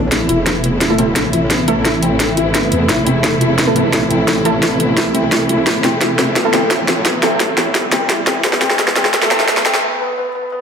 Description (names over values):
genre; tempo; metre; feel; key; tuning
dark technical drum and bass; 173 BPM; 4/4; straight; A minor; A4 = 444 Hz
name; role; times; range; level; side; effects
warm studio string section; sustained chords; 0.0-9.8 s; C3 to E4; -18 LUFS; right 2 dB; sidechain pumping
metallic wobble bass; bass; 0.0-9.8 s; E1 to E2; -23 LUFS; equal; chorus, overdrive, sidechain pumping
felt-muted upright piano; arpeggios; 0.1-10.6 s; A3 to E4; -20 LUFS; left 4 dB; lush chorus, sidechain pumping, low-pass filter, tape echo
drum and bass drum kit; drums; 0.1-9.8 s; hi-hat, snare drum; -16 LUFS; equal; overdrive, high-pass filter on perc, high-pass filter on snare, high-pass filter on hats, high-pass filter on room
electronic kick drum; drums; 0.1-9.6 s; none; -30 LUFS; equal; none
riser; sound effects; 5.4-9.8 s; none; -26 LUFS; right 2 dB; none
orchestra-hit-like synth stab; stabs; 0.9-9.4 s; A3 to A4; -21 LUFS; right 1 dB; built-in reverb, lush chorus, tape echo
room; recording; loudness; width
wet plate reverb, RT60 1.9 s, digital ambience; dreamy mix soaked in reverb, high-pass filter; -12 LUFS; side -6 dB against mid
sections
0.1-10.6 A section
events
build-up 0.1-10.6; drum fill 0.1-9.8; filter sweep on felt piano 0.1-10.6; filter sweep on synth stab 0.1-10.6; filter sweep 0.1-10.6; break 9.8-10.6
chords
0.1 Am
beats
| 0.12 0.46 0.81 1.16 | 1.50 1.85 2.20 2.54 | 2.89 3.24 3.59 3.93 | 4.28 4.63 4.97 5.32 | 5.67 6.01 6.36 6.71 | 7.05 7.40 7.75 8.09 | 8.44 8.79 9.13 9.48 | 9.83 10.18 10.52